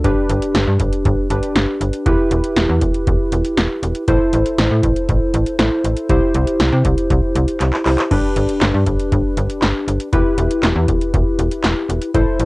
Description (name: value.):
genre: synth-pop.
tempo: 119 BPM.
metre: 4/4.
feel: straight.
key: G major.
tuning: A4 = 440 Hz.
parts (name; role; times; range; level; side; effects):
warm analog keys; accompaniment; 0.0-12.5 s; D4 to C5; -18 LUFS; equal; chorus.
slap-like FM bass; bass; 0.0-12.5 s; E1 to C3; -18 LUFS; equal; none.
electro analog drum machine; drums; 0.0-12.5 s; crash cymbal, handclaps, hi-hat, kick drum, snare drum; -19 LUFS; equal; none.
room: light reverb.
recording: home recording on cassette.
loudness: -14 LUFS.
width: side -22 dB against mid.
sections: 0.0-12.5 A section.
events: drum fill 7.6-8.1.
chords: 0.0 G; 2.1 Em; 4.1 Am; 6.1 C; 8.1 G; 10.1 Em.